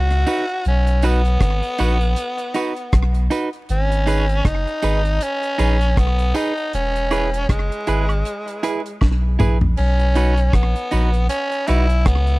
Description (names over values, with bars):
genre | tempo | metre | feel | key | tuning
roots reggae | 79 BPM | 4/4 | swing 58% on 16ths | B major | A4 = 438 Hz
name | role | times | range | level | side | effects
raspy tenor saxophone | melody | 0.0-12.4 s | G#3 to F#4 | -23 LUFS | equal | dub echo
soft dub sub bass | bass | 0.0-12.4 s | E1 to C#2 | -17 LUFS | equal | none
deep reggae drum kit | drums | 0.1-12.4 s | crash cymbal, hi-hat, kick drum, rim click, snare drum, toms | -20 LUFS | equal | slapback echo
clean electric guitar | accompaniment | 0.3-11.9 s | D#4 to B4 | -25 LUFS | right 3 dB | dub echo
tambourine and woodblock | percussion | 0.3-11.9 s | none | -34 LUFS | right 4 dB | none
room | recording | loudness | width
small room ambience | dry, close 1970s-style studio recording, vinyl crackle | -16 LUFS | side -21 dB against mid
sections
0.0-12.4 A section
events
drum fill 9.0-9.8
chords
0.0 B; 3.7 G#m; 6.7 E; 9.8 B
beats
| 0.65 1.41 2.17 2.93 | 3.69 4.45 5.21 5.97 | 6.73 7.49 8.25 9.01 | 9.77 10.54 11.30 12.06